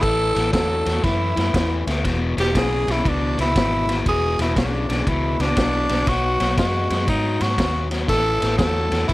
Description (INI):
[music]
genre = electric blues shuffle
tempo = 119 BPM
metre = 4/4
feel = swing 65% on 8ths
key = E mixolydian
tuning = A4 = 440 Hz
[part]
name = growling tenor saxophone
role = melody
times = 0.0-9.1 s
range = D4 to A4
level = -22 LUFS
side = equal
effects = plate reverb
[part]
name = biting overdriven guitar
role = riff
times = 0.0-9.1 s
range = E2 to G#3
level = -25 LUFS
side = left 4 dB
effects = none
[part]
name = vintage muted fingered electric bass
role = bass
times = 0.0-9.1 s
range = E1 to G#2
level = -24 LUFS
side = equal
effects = none
[part]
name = vintage drum kit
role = drums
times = 0.0-9.1 s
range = kick drum, ride cymbal, snare drum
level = -24 LUFS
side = equal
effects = none
[sound]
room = light reverb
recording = none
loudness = -18 LUFS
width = side -18 dB against mid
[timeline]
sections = 0.0-9.1 A section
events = none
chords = 0.0 A5; 2.0 E7(no3); 6.1 B; 8.1 A5